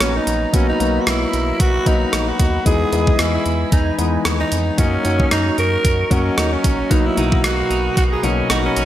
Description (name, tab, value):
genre	1980s-style pop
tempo	113 BPM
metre	4/4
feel	swing 55% on 16ths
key	B major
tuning	A4 = 440 Hz
part	raspy alto saxophone	melody	0.0-8.8 s	C#4 to A#4	-21 LUFS	right 1 dB	none
part	clear baby grand piano	accompaniment	0.0-8.8 s	B2 to D#5	-21 LUFS	left 3 dB	none
part	phased analog pad	sustained chords	0.0-8.8 s	E3 to C#6	-29 LUFS	right 1 dB	phaser, chorus
part	rubbery square bass	bass	0.0-8.8 s	A#1 to F#2	-22 LUFS	equal	none
part	clean 12-bit digital drum machine	drums	0.0-8.8 s	hi-hat, kick drum, rim click	-19 LUFS	equal	none
part	clean electric guitar	riff	6.9-8.8 s	F#3 to F#4	-26 LUFS	right 6 dB	lush chorus
room	moderate lush hall reverb, RT60 2.2 s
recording	bright 1980s-style digital production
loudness	-15 LUFS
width	side -12 dB against mid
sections	0.0-8.8 A section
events	none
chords	0.0 Bmaj7; 2.7 Emaj7; 4.8 F#6; 6.9 Bmaj7